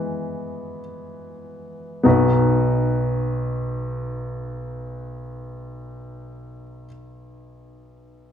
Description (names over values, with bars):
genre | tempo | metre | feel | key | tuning
pop | free time | none | none | B major | A4 = 440 Hz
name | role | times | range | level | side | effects
clear baby grand piano | accompaniment | 0.0-8.3 s | B1 to E5 | -22 LUFS | left 1 dB | none
room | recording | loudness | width
moderate recital hall reverb, RT60 1.5 s | dark, warm production | -20 LUFS | side -8 dB against mid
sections
0.0-2.0 A section; 2.0-7.0 B section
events
slowing down 0.0-2.0; grand piano solo 0.0-2.0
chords
0.0 E; 2.0 B